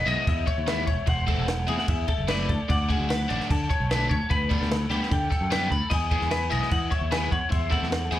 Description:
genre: math rock and midwest emo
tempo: 149 BPM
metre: 4/4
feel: straight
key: E major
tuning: A4 = 440 Hz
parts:
  - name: electric guitar through a small old amp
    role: melody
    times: 0.0-8.2 s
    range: D5 to B5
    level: -31 LUFS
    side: left 1 dB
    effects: slapback echo
  - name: twangy electric guitar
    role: arpeggios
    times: 0.0-8.2 s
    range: G4 to D#5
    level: -31 LUFS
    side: left 3 dB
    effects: ensemble chorus, slapback echo
  - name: growling fingered electric bass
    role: bass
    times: 0.0-8.2 s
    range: E1 to E3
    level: -28 LUFS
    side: equal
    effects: overdrive
  - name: overdriven electric guitar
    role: riff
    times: 0.1-8.2 s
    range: D3 to E4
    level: -32 LUFS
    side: equal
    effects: none
  - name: compact cocktail drum kit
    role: drums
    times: 0.1-8.2 s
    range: crash cymbal, kick drum, snare drum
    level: -27 LUFS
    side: equal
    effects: none
room: little or no reverb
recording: live gig heard through the venue's PA, club ambience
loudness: -22 LUFS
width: side -13 dB against mid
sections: 0.0-8.2 A section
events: none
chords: 0.0 Emaj7; 1.1 Am6/E; 2.5 D6; 4.1 Gmaj7/D; 5.9 Emaj7; 7.5 Am6/E

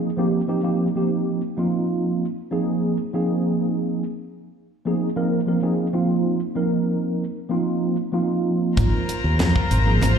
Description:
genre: electric jazz fusion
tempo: 96 BPM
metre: 4/4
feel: straight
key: Ab major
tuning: A4 = 440 Hz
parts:
  - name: mellow tine electric piano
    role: accompaniment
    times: 0.0-10.2 s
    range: F3 to Bb4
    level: -21 LUFS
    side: right 1 dB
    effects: fast stereo tremolo, analog chorus, slapback echo
  - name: rich chamber string section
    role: sustained chords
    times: 8.8-10.2 s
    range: F4 to Bb5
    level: -25 LUFS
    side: left 2 dB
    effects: none
  - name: fingered electric bass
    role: bass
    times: 8.8-10.2 s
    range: Ab1 to F2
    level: -19 LUFS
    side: equal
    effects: none
  - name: tight funk drum kit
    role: drums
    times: 8.8-10.2 s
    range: hi-hat, kick drum, snare drum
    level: -24 LUFS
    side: equal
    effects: none
  - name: congas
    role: percussion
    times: 8.8-10.2 s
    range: none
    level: -27 LUFS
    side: equal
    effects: slapback echo
room: light reverb, small room ambience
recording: live gig heard through the venue's PA, recital hall reverb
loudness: -20 LUFS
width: side -7 dB against mid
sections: 0.0-10.2 A section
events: none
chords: 0.0 Ab69

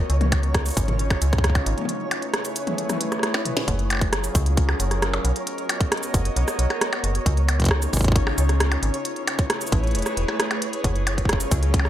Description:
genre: IDM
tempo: 134 BPM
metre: 4/4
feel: straight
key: unclear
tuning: A4 = 441 Hz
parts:
  - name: warbly tape-like pad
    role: sustained chords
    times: 0.0-11.9 s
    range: Db3 to Eb5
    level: -29 LUFS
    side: left 1 dB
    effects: chorus, built-in reverb
  - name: metallic FM bass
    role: bass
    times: 0.0-11.9 s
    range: E1 to Db2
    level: -22 LUFS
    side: equal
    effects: none
  - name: flickering grainy texture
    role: texture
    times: 0.0-11.9 s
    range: Db5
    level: -35 LUFS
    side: right 2 dB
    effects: built-in reverb, sidechain pumping
  - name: glitchy drum kit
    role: drums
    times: 0.1-11.9 s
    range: cabasa, hi-hat, percussion blips, rim click, snare drum, toms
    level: -26 LUFS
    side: equal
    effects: none
  - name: electronic kick drum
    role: drums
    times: 0.3-11.8 s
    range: none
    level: -23 LUFS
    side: equal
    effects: none
room: little or no reverb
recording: none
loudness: -20 LUFS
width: side -12 dB against mid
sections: 0.0-3.7 A section; 3.7-11.9 B section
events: break 1.9-3.7; drum fill 3.3-3.7; band accent 3.6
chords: 0.1 Dbadd9; 1.9 Amaj9; 3.7 Gbmaj9; 5.2 Cbmaj9; 7.3 Dbadd9; 9.1 Amaj9; 10.8 Gbmaj9

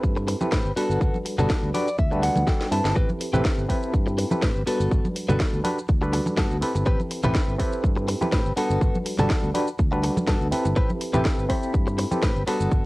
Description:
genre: filtered disco house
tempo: 123 BPM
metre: 4/4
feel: swing 54% on 16ths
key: A dorian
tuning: A4 = 440 Hz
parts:
  - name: barky reed electric piano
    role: accompaniment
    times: 0.0-12.9 s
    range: G3 to B5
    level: -27 LUFS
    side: equal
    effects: overdrive, fast tremolo, phaser, vintage 12-bit sampler grit, sidechain pumping, low-pass filter
  - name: direct-recorded clean electric guitar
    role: riff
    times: 0.0-12.9 s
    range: B3 to A5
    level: -28 LUFS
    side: left 1 dB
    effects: sidechain pumping, low-pass filter
  - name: fingered electric bass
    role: bass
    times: 0.0-12.8 s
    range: G1 to A2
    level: -26 LUFS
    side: equal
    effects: tube saturation, sidechain pumping, low-pass filter
  - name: electronic kick drum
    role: drums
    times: 0.0-12.8 s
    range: none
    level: -23 LUFS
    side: equal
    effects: cassette tape
  - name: maracas and congas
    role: percussion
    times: 0.0-12.8 s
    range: none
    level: -30 LUFS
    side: right 1 dB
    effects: sidechain pumping on perc, low-pass filter on perc
  - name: house drum kit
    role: drums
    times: 0.3-12.6 s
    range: hi-hat, rim click, snare drum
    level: -31 LUFS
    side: equal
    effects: sidechain pumping on hats, cassette tape
room: light reverb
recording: home recording on cassette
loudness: -21 LUFS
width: side -20 dB against mid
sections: 0.0-12.9 A section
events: clean electric guitar fill 1.5-3.0; drum fill 2.5-3.0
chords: 0.0 Am9; 0.8 Gmaj9; 3.0 Am9; 4.7 Gmaj9; 6.9 Am9; 8.6 Gmaj9; 10.8 Am9

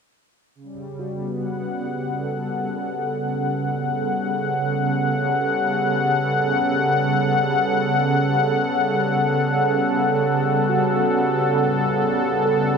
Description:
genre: ambient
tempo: 68 BPM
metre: 4/4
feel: straight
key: G lydian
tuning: A4 = 441 Hz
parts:
  - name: warm analog pad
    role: sustained chords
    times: 0.6-12.8 s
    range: C#3 to F#5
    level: -19 LUFS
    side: equal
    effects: chorus, tremolo
  - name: mellow tine electric piano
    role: arpeggios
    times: 1.0-12.8 s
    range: F#4 to A4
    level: -32 LUFS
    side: right 2 dB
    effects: ping-pong delay
room: wet plate reverb, RT60 2.7 s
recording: dreamy mix soaked in reverb, cassette tape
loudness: -19 LUFS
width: side -6 dB against mid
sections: 0.6-12.8 A section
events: fade-in on tine electric piano 0.6-12.8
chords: 0.6 Gmaj9#11

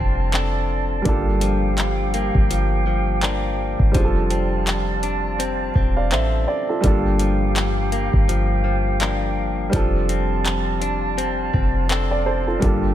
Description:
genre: contemporary R&B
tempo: 83 BPM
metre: 4/4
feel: swing 58% on 16ths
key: F major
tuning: A4 = 440 Hz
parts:
  - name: warm grand piano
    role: accompaniment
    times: 0.0-12.9 s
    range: G3 to F5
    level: -26 LUFS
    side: right 3 dB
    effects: none
  - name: small flute group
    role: sustained chords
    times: 0.0-12.9 s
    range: F4 to A5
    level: -27 LUFS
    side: right 4 dB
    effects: none
  - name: direct-recorded clean electric guitar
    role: arpeggios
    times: 0.0-12.9 s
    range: G2 to A4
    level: -26 LUFS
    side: left 9 dB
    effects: tape echo
  - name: warm 808-style bass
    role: bass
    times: 0.0-12.9 s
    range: E1 to A1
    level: -22 LUFS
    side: equal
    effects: none
  - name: booming analog drum machine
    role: drums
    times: 0.3-12.8 s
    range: handclaps, hi-hat, kick drum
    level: -23 LUFS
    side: equal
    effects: none
room: little or no reverb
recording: none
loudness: -18 LUFS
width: side -12 dB against mid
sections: 0.0-12.9 A section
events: none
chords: 0.0 F6; 1.1 Gm7; 3.9 F6; 6.8 Gm7; 9.7 F6

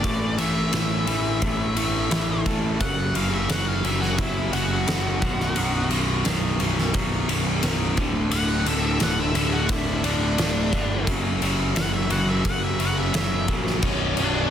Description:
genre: quiet-loud alternative rock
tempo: 87 BPM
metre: 4/4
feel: straight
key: B minor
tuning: A4 = 440 Hz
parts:
  - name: octave-fuzz lead guitar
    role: melody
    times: 0.0-14.5 s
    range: D4 to F#5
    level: -28 LUFS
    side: left 1 dB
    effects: distortion, slapback echo
  - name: twangy electric guitar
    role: arpeggios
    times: 0.0-2.8 s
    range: A2 to A4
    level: -34 LUFS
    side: left 2 dB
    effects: harmonic tremolo
  - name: overdriven electric guitar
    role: riff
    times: 0.0-14.5 s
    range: B1 to C#4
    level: -26 LUFS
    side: equal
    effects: none
  - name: fuzz picked electric bass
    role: bass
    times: 0.0-14.5 s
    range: B0 to A#1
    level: -26 LUFS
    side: equal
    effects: overdrive
  - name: oversized low-tuned drum kit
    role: drums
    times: 0.0-14.3 s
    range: crash cymbal, kick drum, ride cymbal, snare drum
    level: -25 LUFS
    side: equal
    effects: none
room: light reverb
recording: dense, heavily limited modern master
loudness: -20 LUFS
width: side -9 dB against mid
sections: 0.0-13.8 A section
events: lead electric guitar solo 0.0-13.8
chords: 0.0 A5; 2.8 F#5; 5.2 B5; 8.0 D5; 11.1 F#5; 13.8 Bmadd9

